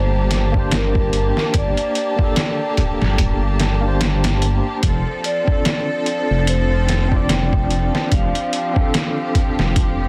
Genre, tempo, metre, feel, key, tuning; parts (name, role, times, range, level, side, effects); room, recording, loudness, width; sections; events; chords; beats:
trip hop; 73 BPM; 4/4; swing 57% on 16ths; G minor; A4 = 436 Hz
vibraphone with medium hard mallets; melody; 0.0-9.3 s; Bb4 to G5; -28 LUFS; equal; dub echo
tine electric piano; accompaniment; 0.0-10.1 s; Bb3 to D5; -27 LUFS; equal; tremolo, tape echo
clear studio string section; sustained chords; 0.0-10.1 s; F3 to A5; -29 LUFS; equal
dark detuned saw bass; bass; 0.0-10.1 s; F1 to G1; -21 LUFS; equal; tube saturation
trip hop sampler-style drum kit; drums; 0.3-10.0 s; hi-hat, kick drum, snare drum; -22 LUFS; equal; overdrive
little or no reverb; dense, heavily limited modern master, vinyl crackle; -18 LUFS; mono
0.0-10.1 A section
0.0 Gmadd9; 4.8 Dm7/F
0.72 | 1.54 2.37 3.19 4.01 | 4.83 5.65 6.47 7.30 | 8.12 8.94 9.76